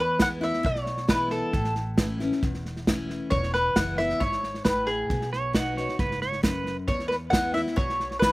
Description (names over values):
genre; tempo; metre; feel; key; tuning
honky-tonk and classic country; 135 BPM; 4/4; straight; E major; A4 = 439 Hz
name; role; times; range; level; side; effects
mandolin; melody; 0.0-8.3 s; G#4 to F#5; -26 LUFS; equal; none
picked steel-string acoustic guitar; accompaniment; 0.0-8.3 s; E2 to F#4; -31 LUFS; left 2 dB; slapback echo
upright bass; bass; 0.0-8.3 s; E1 to E2; -34 LUFS; equal; none
natural country drum kit; drums; 0.2-8.3 s; hi-hat, kick drum, snare drum; -26 LUFS; right 1 dB; none
pedal steel guitar; second line; 5.3-6.8 s; B4 to F#5; -30 LUFS; right 3 dB; none
room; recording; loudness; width
little or no reverb; recorded outdoors, with no room sound; -24 LUFS; side -21 dB against mid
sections
0.0-8.3 A section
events
none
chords
0.0 E; 1.5 A; 3.3 E; 5.1 B; 6.9 E